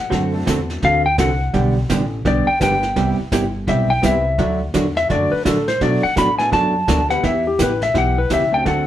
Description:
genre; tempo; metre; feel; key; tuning
country, western swing; 169 BPM; 4/4; swing 63% on 8ths; unclear; A4 = 440 Hz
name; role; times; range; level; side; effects
clean lap steel guitar; melody; 0.0-8.9 s; G4 to B5; -18 LUFS; left 2 dB; none
vintage hollow-body jazz guitar; accompaniment; 0.1-8.9 s; B2 to A4; -20 LUFS; right 2 dB; none
upright bass; bass; 0.1-8.9 s; G1 to B2; -22 LUFS; equal; none
vintage brush drum kit; drums; 0.1-8.9 s; brushed snare drum, hi-hat, kick drum, snare drum; -26 LUFS; equal; none
bright upright piano; accompaniment; 0.3-8.6 s; F#3 to B4; -27 LUFS; left 1 dB; none
room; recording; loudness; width
wet studio reverb, RT60 0.8 s; band playing live in one room; -15 LUFS; side -12 dB against mid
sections
0.0-8.9 A section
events
electric slide guitar solo 0.0-8.9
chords
0.1 D7; 1.5 G; 3.0 Cmaj7; 4.4 D; 5.8 Bm7; 7.2 Em

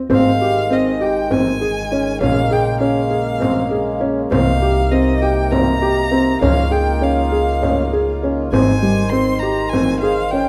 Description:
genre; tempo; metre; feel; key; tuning
contemporary instrumental, chamber music in an uneven meter; 200 BPM (eighths); 7/8; straight; unclear; A4 = 440 Hz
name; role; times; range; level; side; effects
upright bass; bass; 0.0-10.5 s; Ab1 to Db2; -24 LUFS; equal; none
clear violin; melody; 0.1-10.5 s; Eb5 to C6; -25 LUFS; equal; none
pedal harmonium; sustained chords; 0.1-10.5 s; C3 to C5; -25 LUFS; equal; none
felt-muted upright piano; arpeggios; 0.1-10.5 s; G3 to Ab4; -20 LUFS; equal; none
frame drum; percussion; 0.1-10.0 s; none; -27 LUFS; equal; none
room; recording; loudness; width
moderate recital hall reverb, RT60 1.4 s; none; -17 LUFS; mono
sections
0.1-10.5 A section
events
none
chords
0.1 Abmaj7; 2.2 Bbm7; 4.3 Cm7; 6.4 Db69; 8.5 Abmaj7

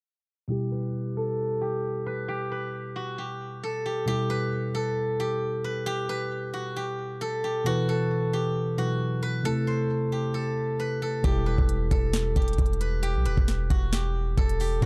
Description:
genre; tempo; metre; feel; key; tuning
hip hop, trap; 134 BPM; 4/4; half-time; E minor; A4 = 441 Hz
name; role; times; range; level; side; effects
steel-string zither; melody; 0.5-14.9 s; F#4 to C5; -32 LUFS; equal; low-pass filter
tine electric piano; accompaniment; 0.5-14.9 s; B2 to B4; -33 LUFS; equal; subtle chorus, low-pass filter
long sustained 808-style bass; bass; 11.2-14.9 s; E1 to B1; -29 LUFS; equal; none
trap drum kit; drums; 11.2-14.9 s; hi-hat, kick drum, snare drum; -27 LUFS; equal; none
room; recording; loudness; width
little or no reverb; dark, warm production; -28 LUFS; mono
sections
0.5-4.1 A section; 4.1-14.9 B section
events
filter sweep 0.5-4.1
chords
0.5 Em; 7.7 Bsus4; 9.4 Am; 11.2 Em

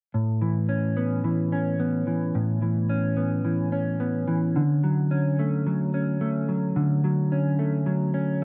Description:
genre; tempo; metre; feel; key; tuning
indie pop; 109 BPM; 4/4; swing 55% on 16ths; A major; A4 = 441 Hz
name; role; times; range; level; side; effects
mellow electric guitar; solo; 0.1-8.4 s; A2 to C#4; -25 LUFS; equal; analog chorus, warbly pitch drift, digital delay
room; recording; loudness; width
moderate studio reverb, RT60 0.5 s; none; -25 LUFS; mono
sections
0.1-8.4 A section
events
none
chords
0.1 Aadd9; 4.6 Dmaj7

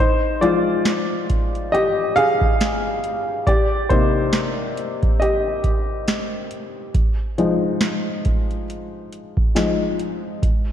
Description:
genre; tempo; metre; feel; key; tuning
lo-fi hip hop; 69 BPM; 4/4; swing 58% on 16ths; unclear; A4 = 440 Hz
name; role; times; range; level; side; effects
warm upright piano; accompaniment; 0.0-10.4 s; C3 to F5; -20 LUFS; left 2 dB; none
booming analog drum machine; drums; 0.4-10.7 s; hi-hat, kick drum, snare drum; -21 LUFS; right 1 dB; none
room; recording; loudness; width
moderate lush hall reverb, RT60 2.6 s; dreamy mix soaked in reverb, cassette tape; -18 LUFS; side -10 dB against mid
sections
0.0-10.7 A section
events
upright piano solo 0.0-10.7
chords
0.0 Fm9; 3.5 Cm7; 6.9 Fm7

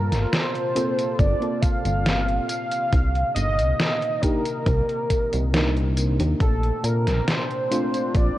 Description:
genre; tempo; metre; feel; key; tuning
vaporwave; 69 BPM; 4/4; straight; unclear; A4 = 440 Hz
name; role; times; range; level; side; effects
warm velvety synth lead; melody; 0.0-8.4 s; A4 to F5; -26 LUFS; equal; chorus, tape echo
warbly tape-like pad; sustained chords; 0.0-8.4 s; Bb2 to A5; -32 LUFS; right 1 dB; chorus, built-in reverb
chorused synth bass; bass; 0.0-8.3 s; G1 to Bb2; -22 LUFS; equal; tube saturation
detuned 8-bit digital drum machine; drums; 0.1-8.3 s; hi-hat, snare drum, tambourine; -26 LUFS; equal; none
mellow FM electric piano; accompaniment; 0.8-8.4 s; A3 to Bb4; -28 LUFS; equal; lush chorus
electronic kick drum; drums; 1.2-8.3 s; none; -21 LUFS; equal; none
room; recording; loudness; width
light reverb, digital ambience; worn, warbling old tape, cassette tape, warbly pitch drift; -20 LUFS; side -15 dB against mid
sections
0.0-8.4 A section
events
none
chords
0.0 Gm11; 2.5 Cm9; 6.4 Bbmaj9

